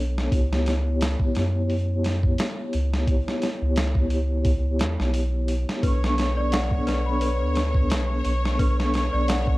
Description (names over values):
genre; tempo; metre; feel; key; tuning
trip hop; 87 BPM; 4/4; swing 55% on 16ths; unclear; A4 = 437 Hz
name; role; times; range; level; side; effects
vibraphone with soft mallets; accompaniment; 0.0-9.6 s; B3 to C#6; -27 LUFS; left 1 dB; tremolo, vintage 12-bit sampler grit, low-pass filter, tape echo
soft dub sub bass; bass; 0.0-9.6 s; B1 to F#2; -24 LUFS; equal; none
boom bap sampler-style drum kit; drums; 0.2-9.6 s; hi-hat, kick drum, snare drum; -26 LUFS; equal; none
bright symphonic string section; sustained chords; 5.8-9.6 s; C#5; -31 LUFS; left 1 dB; none
worn celesta; arpeggios; 5.8-9.6 s; B4 to B5; -32 LUFS; left 3 dB; digital delay
room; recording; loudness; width
little or no reverb; worn, warbling old tape, cassette tape, warbly pitch drift; -21 LUFS; side -19 dB against mid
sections
0.0-9.6 A section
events
filter sweep on vibraphone 0.0-9.6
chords
0.3 C#m7b5; 5.8 Bm9